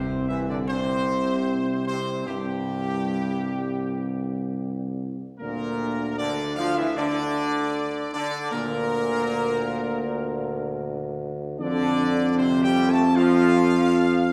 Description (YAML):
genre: classical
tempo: 77 BPM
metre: 4/4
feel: straight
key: unclear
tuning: A4 = 440 Hz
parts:
  - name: clear trumpet section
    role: melody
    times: 0.0-14.3 s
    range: G4 to A5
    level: -32 LUFS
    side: equal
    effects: none
  - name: mellow French horn section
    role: sustained chords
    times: 0.0-14.3 s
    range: G3 to A4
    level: -31 LUFS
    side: equal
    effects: none
  - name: warm trombone section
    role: sustained chords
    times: 0.0-14.3 s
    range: G2 to A3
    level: -33 LUFS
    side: equal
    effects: none
  - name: warm tuba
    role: bass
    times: 0.0-14.3 s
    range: C2 to F2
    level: -27 LUFS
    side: equal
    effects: none
room: wet scoring stage reverb, RT60 1.7 s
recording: heard from further back in the room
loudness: -24 LUFS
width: mono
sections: 0.0-14.3 A section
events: none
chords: 0.0 C5; 5.4 Bb/D; 11.6 F69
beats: 0.69 1.48 | 2.27 3.06 3.83 4.61 | 5.40 6.18 6.96 7.73 | 8.51 9.29 10.06 10.83 | 11.60 12.38 13.16 13.94